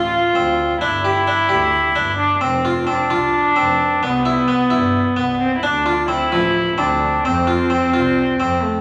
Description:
contemporary instrumental, chamber music in an uneven meter; 261 BPM (eighths); 7/8; straight; F lydian; A4 = 440 Hz
warm viola; second line; 0.0-8.8 s; A3 to F4; -19 LUFS; equal
harpsichord; arpeggios; 0.0-8.8 s; F3 to G4; -22 LUFS; equal
rich double bass; bass; 0.0-8.8 s; F1 to G2; -29 LUFS; equal
wet recital hall reverb, RT60 1.4 s; vinyl crackle; -17 LUFS; mono
0.0-8.8 A section
0.0 Dm; 0.8 G5; 2.4 F5; 4.0 Cmaj7; 5.6 Dm; 7.2 F5

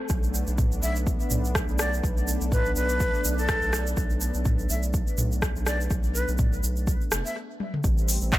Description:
afro house; 124 BPM; 4/4; swing 57% on 16ths; A4 = 441 Hz
warm analog pad; sustained chords; 0.0-8.4 s; G3 to D4; -34 LUFS; left 1 dB; chorus, sidechain pumping
round analog bass; bass; 0.1-8.4 s; F1 to B1; -28 LUFS; equal; sidechain pumping
electronic kick drum; drums; 0.1-8.4 s; -26 LUFS; equal
egg shaker; percussion; 0.1-8.4 s; -34 LUFS; right 2 dB
afro-pop drum kit; drums; 0.6-8.4 s; handclaps, hi-hat, rim click, toms; -30 LUFS; equal; analog delay
breathy jazz flute; melody; 0.8-7.4 s; A4 to E5; -31 LUFS; left 1 dB; dub echo
digital ambience; echo-heavy mix; -23 LUFS; side -16 dB against mid
0.0-7.8 A section
stop 7.4-7.8; drum fill 7.6
0.1 Bm7; 7.8 Am7

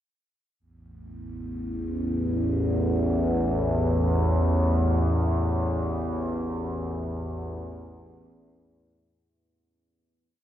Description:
ambient; free time; A4 = 440 Hz
overtone-sweeping drone; solo; 1.2-9.4 s; A1 to E2; -24 LUFS; equal; chorus, built-in reverb, diffuse ambient delay
wet cathedral reverb, RT60 6.8 s; worn, warbling old tape, cassette tape, warbly pitch drift; -24 LUFS; side -11 dB against mid
0.6-9.3 A section
fade-out 5.0-9.3
0.6 A5

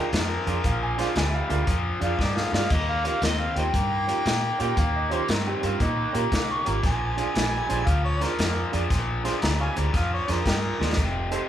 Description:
electric blues shuffle; 116 BPM; 4/4; swing 66% on 8ths; Bb mixolydian; A4 = 440 Hz
warm harmonica; melody; 0.0-11.0 s; Eb4 to Db6; -29 LUFS; equal; overdrive
warm upright piano; accompaniment; 0.0-11.4 s; Db4 to D5; -33 LUFS; right 6 dB
biting overdriven guitar; riff; 0.0-11.5 s; F2 to C4; -29 LUFS; left 2 dB
vintage muted fingered electric bass; bass; 0.1-11.3 s; F1 to C3; -28 LUFS; equal
crunchy breakbeat drum kit; drums; 0.1-11.4 s; crash cymbal, hi-hat, kick drum, snare drum; -27 LUFS; equal
bright upright piano; second line; 0.7-6.1 s; Eb4 to Ab5; -32 LUFS; right 3 dB
moderate large studio reverb, RT60 1.1 s; band playing live in one room; -22 LUFS; side -11 dB against mid
0.0-11.5 A section
drum fill 2.2-2.7, 10.7
0.0 Bb7; 2.7 Eb7; 6.8 Bb7; 11.0 F7

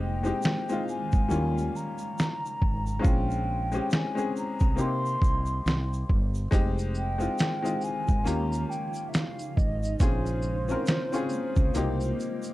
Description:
lo-fi hip hop; 69 BPM; 4/4; swing 59% on 16ths; Bb dorian; A4 = 439 Hz
mellow hollow concert flute; melody; 0.0-12.5 s; C5 to C6; -34 LUFS; equal; analog delay
bright upright piano; accompaniment; 0.0-12.5 s; G3 to Bb4; -32 LUFS; left 2 dB
granular cloud pad; sustained chords; 0.0-12.5 s; C3 to F4; -37 LUFS; right 1 dB; built-in reverb
woody fretless electric bass; bass; 0.0-12.1 s; F1 to C3; -29 LUFS; equal
tube shaker; percussion; 0.2-12.5 s; -50 LUFS; right 6 dB
dusty soul sampler-style drum kit; drums; 0.5-12.5 s; hi-hat, kick drum, shaker, snare drum; -25 LUFS; equal; overdrive
light reverb; dark, warm production; -25 LUFS; side -17 dB against mid
0.0-12.5 A section
break 0.0-6.5
0.0 Fm9; 1.3 Eb9; 3.0 Bbm9; 4.8 Cm7; 6.5 Fm9; 8.3 Eb9; 10.0 Bbm9; 11.7 Cm7

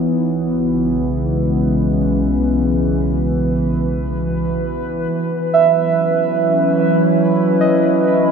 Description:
ambient; free time; C# minor; A4 = 442 Hz
warbly tape-like pad; sustained chords; 0.0-8.3 s; E3 to C#5; -16 LUFS; right 1 dB; chorus, built-in reverb
warm sub bass; bass; 0.0-5.1 s; B1; -24 LUFS; equal
analog drone; drone; 0.9-5.2 s; C#3 to G#3; -23 LUFS; left 1 dB; chorus
muted felt-like synth keys; arpeggios; 5.5-8.3 s; D#5 to E5; -16 LUFS; right 4 dB; chorus, tape echo
wet huge ambient reverb, RT60 8.4 s; in a vast, echoing space; -14 LUFS; side -6 dB against mid
0.0-5.1 A section; 5.1-8.3 B section
filter sweep on ambient pad 0.0-5.1
0.1 Bsus4; 5.1 C#m11

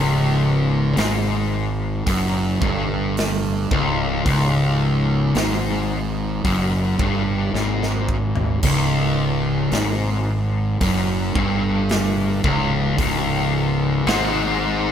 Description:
stoner and doom metal; 55 BPM; 4/4; straight; A4 = 441 Hz
fuzz guitar; riff; 0.0-14.9 s; C#2 to G#2; -20 LUFS; left 1 dB; distortion
fuzz fingered electric bass; bass; 0.0-14.9 s; C#1 to G#1; -24 LUFS; equal; overdrive, tube saturation
big rock drum kit; drums; 1.0-14.3 s; crash cymbal, hi-hat, kick drum, snare drum, toms; -26 LUFS; right 1 dB
light reverb; band playing live in one room; -18 LUFS; side -9 dB against mid
0.0-14.9 A section
drum fill 7.5-8.6
0.0 C#5

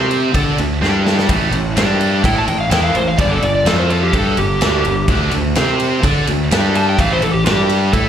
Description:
blues rock power trio and southern rock; 126 BPM; 4/4; straight; A4 = 437 Hz
tight distorted guitar; riff; 0.0-8.1 s; G2 to D5; -18 LUFS; right 1 dB; distortion, slapback echo
fuzz fingered electric bass; bass; 0.0-8.1 s; G1 to D3; -18 LUFS; equal; overdrive
big rock drum kit; drums; 0.1-8.0 s; kick drum, ride cymbal, snare drum; -19 LUFS; equal
overdriven slide guitar; melody; 2.3-8.1 s; G4 to A5; -18 LUFS; equal
light reverb, small room reverb; live gig heard through the venue's PA, club reverb; -13 LUFS; side -9 dB against mid
0.0-8.1 A section
electric slide guitar solo 0.0-8.1; drum fill 0.8-1.3
0.3 D5; 0.8 G5; 1.3 A5; 1.8 G5; 2.2 A5; 3.2 G5; 3.7 F5; 4.1 G5; 5.1 D5; 5.6 C5; 6.0 D5; 6.5 G5; 7.0 A5; 7.5 G5

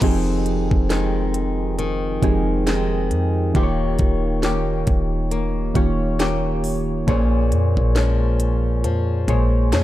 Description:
contemporary R&B; 68 BPM; 4/4; swing 58% on 16ths; F minor; A4 = 440 Hz
soft electric-piano-like synth keys; accompaniment; 0.0-9.8 s; Bb2 to Db5; -22 LUFS; right 1 dB; chorus
flamenco guitar; arpeggios; 0.0-9.8 s; F2 to G4; -26 LUFS; left 4 dB; tape echo
clean 808-style bass; bass; 0.0-9.8 s; Eb1 to F2; -22 LUFS; equal
trap drum kit; drums; 0.0-9.8 s; crash cymbal, hi-hat, kick drum, snare drum; -22 LUFS; equal
little or no reverb; dark, warm production; -18 LUFS; side -14 dB against mid
0.0-9.8 A section
0.0 Fm7; 3.5 Eb7; 7.1 Bbm7

